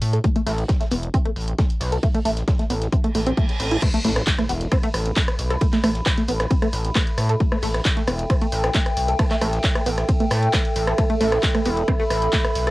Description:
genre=driving peak-time techno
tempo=134 BPM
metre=4/4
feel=straight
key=unclear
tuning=A4 = 444 Hz
part: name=gritty driven synth bass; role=bass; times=0.0-12.7 s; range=E1 to A2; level=-23 LUFS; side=equal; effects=sidechain pumping
part: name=deep reggae drum kit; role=drums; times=0.0-12.7 s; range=hi-hat, snare drum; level=-39 LUFS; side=equal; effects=none
part: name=punchy analog drum machine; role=drums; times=0.0-12.7 s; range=crash cymbal, handclaps, hi-hat, ride cymbal, rim click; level=-26 LUFS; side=equal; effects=sidechain pumping on hats, cassette tape, sidechain pumping on cymbals
part: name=tight sequenced synth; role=riff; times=0.1-12.7 s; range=A3 to A4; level=-25 LUFS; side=equal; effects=chorus, phaser, sidechain pumping, cassette tape, tape echo
part: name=electronic kick drum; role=drums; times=0.2-12.4 s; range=none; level=-21 LUFS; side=equal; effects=overdrive, cassette tape
part: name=reverse cymbal and impact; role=sound effects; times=3.1-5.6 s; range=none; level=-33 LUFS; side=right 1 dB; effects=none
part: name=warbly tape-like pad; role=texture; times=4.6-12.7 s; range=A4 to B5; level=-26 LUFS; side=right 1 dB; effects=chorus, built-in reverb, sidechain pumping, cassette tape
room=light reverb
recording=home recording on cassette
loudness=-18 LUFS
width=side -18 dB against mid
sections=0.0-3.8 A section; 3.8-12.7 B section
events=reverse cymbal 3.1-3.8; drop 3.8-12.7; impact 3.8-5.6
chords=0.0 N.C.; 3.8 A5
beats=| 0.24 0.69 1.14 1.58 | 2.03 2.48 2.93 3.37 | 3.82 4.27 4.72 5.17 | 5.61 6.06 6.51 6.96 | 7.40 7.85 8.30 8.75 | 9.19 9.64 10.09 10.54 | 10.98 11.43 11.88 12.33

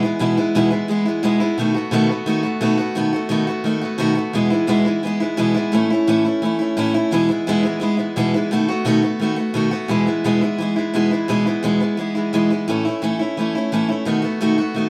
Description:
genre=rock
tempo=173 BPM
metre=4/4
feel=straight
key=E major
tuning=A4 = 442 Hz
part: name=picked steel-string acoustic guitar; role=solo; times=0.0-14.9 s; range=E2 to F#4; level=-19 LUFS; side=equal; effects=none
room=wet studio reverb, RT60 0.8 s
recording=band playing live in one room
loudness=-19 LUFS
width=mono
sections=0.0-9.9 A section; 9.9-14.9 B section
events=none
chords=0.0 E; 1.6 B7; 4.4 E; 5.7 A; 7.1 E; 8.5 B7; 9.9 E; 12.7 A; 14.1 B7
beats=| 0.20 0.55 0.89 1.24 | 1.58 1.93 2.27 2.62 | 2.97 3.31 3.66 4.01 | 4.35 4.70 5.04 5.39 | 5.74 6.08 6.43 6.78 | 7.12 7.47 7.82 8.16 | 8.51 8.86 9.20 9.55 | 9.90 10.24 10.59 10.94 | 11.29 11.64 11.98 12.33 | 12.68 13.03 13.38 13.72 | 14.07 14.42 14.77

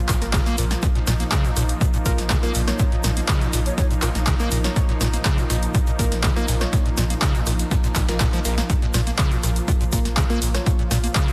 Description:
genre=acid house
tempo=122 BPM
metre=4/4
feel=straight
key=Bb minor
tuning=A4 = 440 Hz
part: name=warm analog pad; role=sustained chords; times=0.0-11.3 s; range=F3 to F4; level=-33 LUFS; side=equal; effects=chorus, sidechain pumping
part: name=acid bass, square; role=riff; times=0.1-11.3 s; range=Bb1 to Bb3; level=-29 LUFS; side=equal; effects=subtle chorus, tape echo
part: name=saturated sub bass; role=bass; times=0.1-11.1 s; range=Ab1 to Bb1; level=-27 LUFS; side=equal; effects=sidechain pumping
part: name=dusty soul sampler-style drum kit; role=drums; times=0.1-11.3 s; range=hi-hat, snare drum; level=-40 LUFS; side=equal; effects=none
part: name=electronic kick drum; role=drums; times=0.1-11.3 s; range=none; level=-23 LUFS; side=equal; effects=overdrive
part: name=punchy analog drum machine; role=drums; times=0.1-11.3 s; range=handclaps, hi-hat, rim click, snare drum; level=-29 LUFS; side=equal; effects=overdrive
part: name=egg shaker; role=percussion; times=0.1-11.3 s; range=none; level=-37 LUFS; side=equal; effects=none
part: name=deep mellow chord stab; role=stabs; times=0.2-10.8 s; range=Bb3 to Db5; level=-34 LUFS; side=equal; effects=chorus, tape echo
part: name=breathy jazz flute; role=melody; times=3.7-3.9 s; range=Db5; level=-36 LUFS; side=equal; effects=tape echo
room=light reverb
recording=dense, heavily limited modern master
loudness=-21 LUFS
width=mono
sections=0.0-11.3 A section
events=none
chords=0.0 Bb5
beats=0.34 | 0.83 1.32 1.81 2.30 | 2.79 3.29 3.78 4.27 | 4.76 5.25 5.75 6.24 | 6.73 7.22 7.71 8.21 | 8.70 9.19 9.68 10.17 | 10.66 11.16

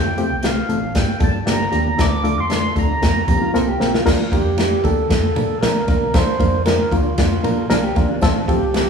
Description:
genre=uptempo 1960s-style soul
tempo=116 BPM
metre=4/4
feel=straight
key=Bb major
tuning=A4 = 440 Hz
part: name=tonewheel organ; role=melody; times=0.0-8.9 s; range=F4 to D6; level=-22 LUFS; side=right 2 dB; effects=slow rotary speaker
part: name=reed electric piano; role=accompaniment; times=0.0-8.9 s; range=F3 to Bb4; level=-22 LUFS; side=left 2 dB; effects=fast tremolo
part: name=vintage muted picked electric bass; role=bass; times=0.0-8.9 s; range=F1 to F3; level=-25 LUFS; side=equal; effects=none
part: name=swinging big-band drum kit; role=drums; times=0.2-8.9 s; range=crash cymbal, hi-hat, kick drum, ride cymbal, snare drum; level=-19 LUFS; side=right 1 dB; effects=none
part: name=tambourine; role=percussion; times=0.2-8.9 s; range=none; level=-43 LUFS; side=right 4 dB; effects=none
part: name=congas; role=percussion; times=0.4-8.9 s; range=none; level=-32 LUFS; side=right 2 dB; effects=none
part: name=mellow electric guitar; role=riff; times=3.4-4.2, 7.4-8.3 s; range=D4 to Bb4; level=-25 LUFS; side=left 2 dB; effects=spring reverb
room=moderate large studio reverb, RT60 1.4 s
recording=band playing live in one room, small room ambience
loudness=-15 LUFS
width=side -6 dB against mid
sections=0.0-4.1 A section; 4.1-8.9 B section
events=drum fill 3.5-4.1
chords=0.0 Fadd9; 1.0 Gm7; 2.0 Dm; 3.0 Fsus4; 4.1 Bb; 8.2 F/A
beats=0.44 0.95 1.47 | 1.99 2.51 3.03 3.55 | 4.07 4.59 5.11 5.63 | 6.14 6.67 7.18 7.71 | 8.22 8.74

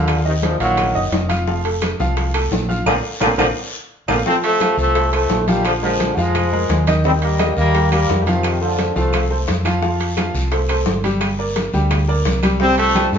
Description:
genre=latin, salsa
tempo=172 BPM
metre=4/4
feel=straight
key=unclear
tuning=A4 = 440 Hz
part: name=bright trombone section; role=melody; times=0.0-9.3, 12.6-13.2 s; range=Bb2 to C4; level=-18 LUFS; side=equal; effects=none
part: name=clear grand piano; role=accompaniment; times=0.0-13.2 s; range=Eb3 to F6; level=-22 LUFS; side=equal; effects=none
part: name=hollow-body short-scale fingered electric bass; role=bass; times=0.0-13.2 s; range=F1 to G2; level=-20 LUFS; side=equal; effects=none
part: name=bongos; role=percussion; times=0.1-13.2 s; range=none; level=-28 LUFS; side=left 5 dB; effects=none
part: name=claves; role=percussion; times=0.1-13.1 s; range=none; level=-31 LUFS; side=right 1 dB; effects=none
part: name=congas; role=percussion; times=0.1-13.2 s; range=none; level=-26 LUFS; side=equal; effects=none
part: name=guiro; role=percussion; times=0.1-13.2 s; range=none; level=-34 LUFS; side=left 3 dB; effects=none
part: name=timbales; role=percussion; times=0.1-13.1 s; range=none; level=-28 LUFS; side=right 5 dB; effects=none
room=wet studio reverb, RT60 0.8 s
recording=band playing live in one room, nothing above 7.5 kHz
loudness=-15 LUFS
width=side -7 dB against mid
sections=0.0-4.3 A section; 4.3-13.2 B section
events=drum fill 2.9-4.3; band accent 2.9-4.3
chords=0.1 Ebmadd9; 1.5 F; 2.9 Bb; 4.3 F; 5.7 Bb7; 7.0 Eb; 8.4 F; 11.2 Gm; 12.6 C5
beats=| 0.08 0.43 0.78 1.13 | 1.47 1.82 2.17 2.52 | 2.87 3.21 3.56 3.91 | 4.26 4.61 4.96 5.30 | 5.65 6.00 6.35 6.70 | 7.04 7.39 7.74 8.09 | 8.44 8.78 9.13 9.48 | 9.83 10.17 10.52 10.87 | 11.22 11.56 11.91 12.26 | 12.60 12.95

